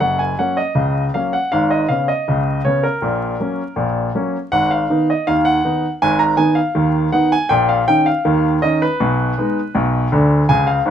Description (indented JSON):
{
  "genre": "ragtime piano",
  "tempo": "80 BPM",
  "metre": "2/4",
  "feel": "straight",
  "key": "unclear",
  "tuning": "A4 = 440 Hz",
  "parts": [
    { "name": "clear baby grand piano", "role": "solo", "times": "0.0-10.9 s", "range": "F#1 to A#5", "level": "-14 LUFS", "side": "equal", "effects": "none" }
  ],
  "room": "light reverb",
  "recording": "minimal, uncompressed stereo recording, vinyl crackle",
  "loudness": "-14 LUFS",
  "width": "side -9 dB against mid",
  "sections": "0.0-10.9 A section",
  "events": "none",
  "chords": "0.0 F#; 1.5 C#5/G#; 3.0 F#/A#; 4.5 G#m; 7.5 D#5/A#; 9.0 G#m/B",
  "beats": "| 0.03 0.78 | 1.53 2.28 | 3.02 3.77 | 4.52 5.27 | 6.02 6.76 | 7.51 8.26 | 9.00 9.74 | 10.49"
}